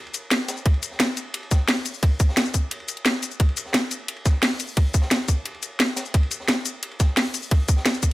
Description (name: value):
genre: drum and bass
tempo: 175 BPM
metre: 4/4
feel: straight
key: none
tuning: none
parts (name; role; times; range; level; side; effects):
- crunchy breakbeat drum kit; drums; 0.1-8.1 s; hi-hat, ride cymbal, snare drum; -34 LUFS; equal; high-pass filter on cymbals, studio reverb, high-pass filter on hats, high-pass filter on snare, high-pass filter on room
- drum and bass drum kit; drums; 0.1-8.1 s; hi-hat, shaker, snare drum; -22 LUFS; equal; overdrive, studio reverb
- electronic kick drum; drums; 0.7-8.1 s; none; -18 LUFS; equal; overdrive, studio reverb
room: small room ambience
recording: none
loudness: -20 LUFS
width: side -17 dB against mid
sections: 0.0-8.1 A section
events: none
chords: none